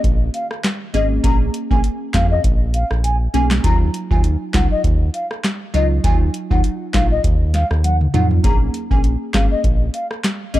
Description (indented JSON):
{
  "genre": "dancehall",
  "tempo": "100 BPM",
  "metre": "4/4",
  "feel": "swing 56% on 16ths",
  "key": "Eb minor",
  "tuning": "A4 = 438 Hz",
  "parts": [
    { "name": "round analog bass", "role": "bass", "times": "0.0-10.6 s", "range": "Ab1 to F2", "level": "-18 LUFS", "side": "equal", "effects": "none" },
    { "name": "booming analog drum machine", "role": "drums", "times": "0.0-10.6 s", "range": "handclaps, hi-hat, kick drum, rim click, snare drum, toms", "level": "-18 LUFS", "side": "equal", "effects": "none" },
    { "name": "mellow hollow wooden flute", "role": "melody", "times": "0.3-10.6 s", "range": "Eb5 to Bb5", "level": "-24 LUFS", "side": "left 1 dB", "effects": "digital delay" },
    { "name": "glassy wavetable pluck", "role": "accompaniment", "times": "0.9-10.6 s", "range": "Gb3 to Ab4", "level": "-24 LUFS", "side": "right 1 dB", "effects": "chorus, sidechain pumping" }
  ],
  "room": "digital ambience",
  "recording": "dark, warm production",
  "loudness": "-15 LUFS",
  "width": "side -15 dB against mid",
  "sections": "0.0-10.6 A section",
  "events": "drum fill 7.8-8.4",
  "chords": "0.0 Bbm7; 3.6 Ebmadd9; 8.4 Bbm7"
}